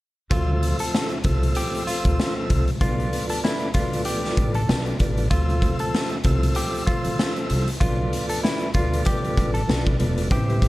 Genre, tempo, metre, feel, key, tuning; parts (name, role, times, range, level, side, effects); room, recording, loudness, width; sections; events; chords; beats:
hip hop, boom-bap hip-hop; 96 BPM; 4/4; swing 56% on 16ths; A4 = 441 Hz
clean electric guitar; melody; 0.3-10.7 s; E4 to A4; -30 LUFS; equal; high-pass filter, low-pass filter, slapback echo
tonewheel organ; accompaniment; 0.3-10.7 s; F3 to E5; -28 LUFS; equal; fast rotary speaker, high-pass filter, low-pass filter
upright bass; bass; 0.3-10.7 s; E1 to D2; -24 LUFS; equal
raw garage drum kit; drums; 0.3-10.7 s; hi-hat, kick drum, snare drum; -23 LUFS; equal
little or no reverb; dark, warm production; -20 LUFS; side -18 dB against mid
0.3-5.3 A section; 5.3-10.7 B section
0.3 Dm7; 2.8 Bm7b5; 5.3 Dm7; 7.8 Bm7b5
| 0.31 0.93 1.56 2.18 | 2.81 3.43 4.06 4.68 | 5.31 5.93 6.56 7.18 | 7.81 8.43 9.06 9.68 | 10.31